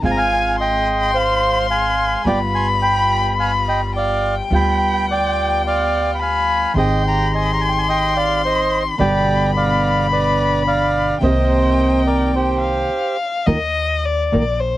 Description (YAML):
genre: tango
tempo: 107 BPM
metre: 4/4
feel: rubato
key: C minor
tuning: A4 = 440 Hz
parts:
  - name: bandoneon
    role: melody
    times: 0.0-13.2 s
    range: G4 to C6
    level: -18 LUFS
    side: right 2 dB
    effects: none
  - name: warm violin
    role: second line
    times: 0.0-14.8 s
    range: C5 to C6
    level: -21 LUFS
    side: left 5 dB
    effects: none
  - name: nylon-string guitar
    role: accompaniment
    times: 0.0-14.4 s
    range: B2 to Bb4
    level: -22 LUFS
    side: right 1 dB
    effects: none
  - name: clear chamber string section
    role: stabs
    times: 0.0-12.8 s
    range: G3 to Bb4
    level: -31 LUFS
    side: equal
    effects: none
  - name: upright bass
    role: bass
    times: 0.0-14.8 s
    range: G1 to Eb2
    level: -23 LUFS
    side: equal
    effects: none
room: light reverb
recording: worn, warbling old tape, cassette tape, vinyl crackle, warbly pitch drift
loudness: -15 LUFS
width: side -15 dB against mid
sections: 0.0-13.5 A section; 13.5-14.8 B section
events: stop 12.9-13.5; violin solo 13.5-14.8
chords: 0.0 Ab6; 2.3 G7; 6.8 Abmaj7; 9.0 G; 11.2 Cm7; 13.5 Ebsus2